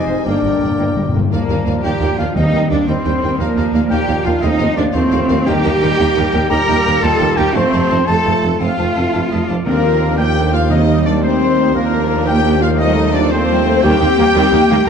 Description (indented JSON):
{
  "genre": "cinematic",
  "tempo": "115 BPM (dotted quarters)",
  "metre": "6/8",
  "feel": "straight",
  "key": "unclear",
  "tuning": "A4 = 440 Hz",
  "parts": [
    { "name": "warm symphonic violin section", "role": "melody", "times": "0.0-14.9 s", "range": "Bb4 to A5", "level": "-27 LUFS", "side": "left 8 dB", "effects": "none" },
    { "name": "clear oboe", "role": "second line", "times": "0.0-1.0, 9.1-14.8 s", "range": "Bb4 to G5", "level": "-28 LUFS", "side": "equal", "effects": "none" },
    { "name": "warm symphonic violin section", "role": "second line", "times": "0.0-14.9 s", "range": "Bb4 to G5", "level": "-28 LUFS", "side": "left 4 dB", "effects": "none" },
    { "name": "bright trombone section", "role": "sustained chords", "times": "0.0-14.8 s", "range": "G2 to Eb4", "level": "-25 LUFS", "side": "right 3 dB", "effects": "none" },
    { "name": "mellow French horn section", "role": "sustained chords", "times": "0.0-14.9 s", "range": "A3 to D5", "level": "-21 LUFS", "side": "left 6 dB", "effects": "none" },
    { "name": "mellow trumpet section", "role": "stabs", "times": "0.0-14.9 s", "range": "Bb4 to Bb5", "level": "-22 LUFS", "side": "left 1 dB", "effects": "none" },
    { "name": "clear clarinet", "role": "second line", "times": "0.1-14.9 s", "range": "F3 to C5", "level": "-26 LUFS", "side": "left 2 dB", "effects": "none" },
    { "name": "concert flute", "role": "second line", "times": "0.1-14.9 s", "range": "Bb4 to Bb5", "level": "-27 LUFS", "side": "left 2 dB", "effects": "none" },
    { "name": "warm symphonic viola section", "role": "accompaniment", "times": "0.1-14.9 s", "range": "C3 to A4", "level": "-24 LUFS", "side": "right 3 dB", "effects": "none" },
    { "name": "clear tuba", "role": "bass", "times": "0.1-14.8 s", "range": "F1 to Eb2", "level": "-22 LUFS", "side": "right 4 dB", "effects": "none" },
    { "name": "rich symphonic cello section", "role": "bass", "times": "0.1-14.9 s", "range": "F2 to Bb4", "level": "-19 LUFS", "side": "right 2 dB", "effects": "none" },
    { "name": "rich symphonic double bass section", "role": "bass", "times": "0.1-14.9 s", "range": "F1 to F2", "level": "-20 LUFS", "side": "right 2 dB", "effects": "none" },
    { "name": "timpani", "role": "percussion", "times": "0.3-2.8, 5.5-6.0, 9.7-11.2 s", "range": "G2 to Eb3", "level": "-21 LUFS", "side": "left 1 dB", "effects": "none" }
  ],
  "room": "wet scoring stage reverb, RT60 1.8 s",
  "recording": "dark, warm production",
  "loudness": "-12 LUFS",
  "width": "side -6 dB against mid",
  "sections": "0.0-1.3 A section; 1.3-9.7 B section; 9.7-14.9 B section",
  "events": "timpani fill 0.3-1.3",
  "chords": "0.3 Gm; 1.3 Bb/Eb; 2.4 Cm/Eb; 3.4 Bb/Eb; 4.4 F/Eb; 5.5 Eb; 7.6 F; 9.7 Bb/Eb; 10.7 Cm/Eb; 11.8 Bb/Eb; 12.8 F/Eb; 13.8 Eb"
}